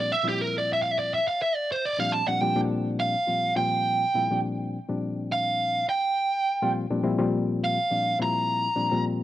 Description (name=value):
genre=jazz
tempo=104 BPM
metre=4/4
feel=straight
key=Bb lydian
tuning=A4 = 441 Hz
part: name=biting lead guitar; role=melody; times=0.0-9.0 s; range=G4 to Bb5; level=-25 LUFS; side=right 2 dB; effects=overdrive
part: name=barky reed electric piano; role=accompaniment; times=0.0-9.2 s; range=Bb2 to F4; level=-27 LUFS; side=left 3 dB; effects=overdrive
room=digital ambience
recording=dry, close 1970s-style studio recording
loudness=-23 LUFS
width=side -13 dB against mid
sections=0.0-9.2 A section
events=lead electric guitar solo 0.0-9.2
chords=0.0 Bb6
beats=| 0.10 0.68 1.26 1.84 | 2.42 3.00 3.58 4.15 | 4.73 5.31 5.89 6.47 | 7.05 7.63 8.21 8.78